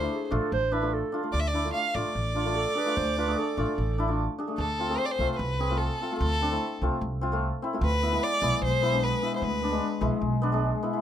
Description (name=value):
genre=klezmer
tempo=148 BPM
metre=4/4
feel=straight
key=unclear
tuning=A4 = 441 Hz
part: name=rich violin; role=melody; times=0.0-10.0 s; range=A4 to F5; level=-29 LUFS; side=equal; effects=none
part: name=hammered dulcimer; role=accompaniment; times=0.0-11.0 s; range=G#3 to G#4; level=-30 LUFS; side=left 2 dB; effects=none
part: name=upright bass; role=bass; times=0.0-10.7 s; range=A1 to D2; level=-29 LUFS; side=right 1 dB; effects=none
part: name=mellow clarinet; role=second line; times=0.1-4.2 s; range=F4 to C5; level=-31 LUFS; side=right 5 dB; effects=none
room=light reverb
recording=close, detailed microphones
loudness=-25 LUFS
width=side -10 dB against mid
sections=0.0-4.6 A section; 4.6-11.0 A section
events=none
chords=0.0 Dm; 4.6 F; 7.8 E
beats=0.11 0.52 0.93 | 1.34 1.74 2.15 2.56 | 2.96 3.37 3.78 4.18 | 4.59 4.99 5.40 5.80 | 6.21 6.61 7.01 7.41 | 7.82 8.22 8.62 9.02 | 9.42 9.82 10.22 10.62